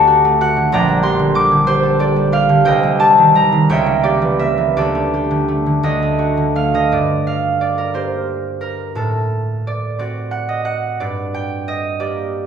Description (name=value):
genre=classical, solo harp piece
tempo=54-63 BPM (dotted quarters)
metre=6/8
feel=rubato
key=G minor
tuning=A4 = 440 Hz
part: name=concert harp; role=solo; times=0.0-12.5 s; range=Bb1 to D6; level=-14 LUFS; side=equal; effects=none
room=wet recital hall reverb, RT60 1.4 s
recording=recorded in a church or concert hall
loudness=-14 LUFS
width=side -7 dB against mid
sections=0.0-6.9 A section; 6.9-12.5 B section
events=none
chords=0.0 D; 0.7 Gm/Bb; 2.6 Cm; 3.7 C#dim7; 4.8 Dsus4; 5.8 D; 6.9 Gm; 8.9 D7/A; 11.0 Gm